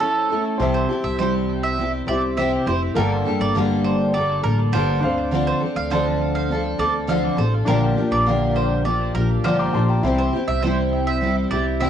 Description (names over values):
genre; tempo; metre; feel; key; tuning
pop; 102 BPM; 4/4; straight; unclear; A4 = 437 Hz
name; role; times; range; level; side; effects
picked steel-string acoustic guitar; accompaniment; 0.0-11.9 s; G2 to A4; -21 LUFS; equal; double-tracked left and right, cassette tape
mandolin; arpeggios; 0.0-11.9 s; A4 to F5; -25 LUFS; right 3 dB; cassette tape, tape echo
warm grand piano; accompaniment; 0.6-11.9 s; Bb3 to F6; -28 LUFS; left 3 dB; cassette tape
upright bass; bass; 0.6-11.9 s; F1 to D2; -24 LUFS; equal; none
room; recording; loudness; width
moderate small room reverb, RT60 0.5 s; home recording on cassette; -18 LUFS; side -9 dB against mid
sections
0.6-11.9 A section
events
break 0.0-0.6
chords
0.0 A; 0.6 C; 3.0 Gmadd9; 5.0 Dm7; 7.7 Bb6; 10.0 C